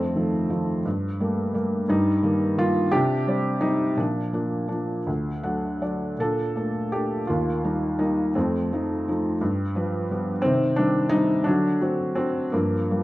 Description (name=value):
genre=classical, lyrical solo piano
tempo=53-59 BPM (dotted quarters)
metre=6/8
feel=rubato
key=G minor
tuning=A4 = 441 Hz
part: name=felt-muted upright piano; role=solo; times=0.0-13.0 s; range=D2 to F#5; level=-22 LUFS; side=equal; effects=none
room=moderate recital hall reverb, RT60 1.3 s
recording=dark, warm production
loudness=-22 LUFS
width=side -17 dB against mid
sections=0.0-13.0 A section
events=felt piano fill 5.1-6.2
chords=0.0 F7; 0.9 Gmadd9; 1.9 Eb/G; 2.9 Csus2; 4.0 Bb; 5.1 D; 6.2 Bbmaj7; 7.3 Eb; 8.4 F7; 9.4 G7; 10.4 Cm; 11.5 D7; 12.5 Gm7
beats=0.85 | 1.89 2.92 | 3.98 5.08 | 6.19 7.28 | 8.36 9.41 | 10.44 11.46 | 12.53